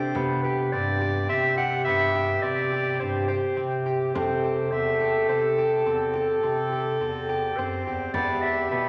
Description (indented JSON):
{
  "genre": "contemporary instrumental, chamber music in an uneven meter",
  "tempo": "105 BPM",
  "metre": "7/4",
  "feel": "straight",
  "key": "C major",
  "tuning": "A4 = 439 Hz",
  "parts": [
    { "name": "mellow clarinet", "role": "melody", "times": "0.0-8.9 s", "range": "A4 to F#5", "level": "-30 LUFS", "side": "equal", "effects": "none" },
    { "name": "concert harp", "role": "arpeggios", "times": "0.0-8.9 s", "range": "B3 to A4", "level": "-32 LUFS", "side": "equal", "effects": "none" },
    { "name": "warm bass clarinet", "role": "bass", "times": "0.0-8.9 s", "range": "E2 to C3", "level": "-33 LUFS", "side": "equal", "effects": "none" },
    { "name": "frame drum", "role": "percussion", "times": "0.1-8.6 s", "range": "none", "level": "-42 LUFS", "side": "equal", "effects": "none" },
    { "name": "warm French horn", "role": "second line", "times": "0.2-8.9 s", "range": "G4 to A4", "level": "-29 LUFS", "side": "equal", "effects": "none" },
    { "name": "hand-pumped harmonium", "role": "sustained chords", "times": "8.1-8.9 s", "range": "D3 to E4", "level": "-38 LUFS", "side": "equal", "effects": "none" }
  ],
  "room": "wet concert hall reverb, RT60 2.1 s",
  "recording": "none",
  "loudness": "-25 LUFS",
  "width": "mono",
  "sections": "0.0-8.9 A section",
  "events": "none",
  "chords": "0.2 Cmaj7; 4.2 Am7; 8.1 Em7"
}